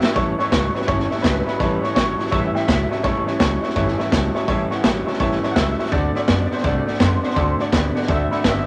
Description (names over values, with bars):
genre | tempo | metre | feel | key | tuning
rockabilly | 166 BPM | 4/4 | swing 64% on 8ths | A mixolydian | A4 = 441 Hz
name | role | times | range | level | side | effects
electric guitar through a small old amp | melody | 0.0-8.7 s | B4 to F#5 | -28 LUFS | equal | tremolo
picked steel-string acoustic guitar | accompaniment | 0.0-8.7 s | A2 to F#4 | -31 LUFS | equal | none
electric guitar through a small old amp | riff | 0.0-8.7 s | A2 to B3 | -28 LUFS | equal | none
upright bass | bass | 0.0-8.7 s | G1 to F#2 | -27 LUFS | equal | none
raw garage drum kit | drums | 0.0-8.6 s | hi-hat, kick drum, snare drum | -24 LUFS | equal | none
warm upright piano | accompaniment | 0.2-8.6 s | C#5 to B5 | -29 LUFS | equal | none
room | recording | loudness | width
moderate studio ambience, RT60 0.5 s | none | -20 LUFS | mono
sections
0.2-8.7 A section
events
drum fill 0.0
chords
0.2 A7; 5.9 D7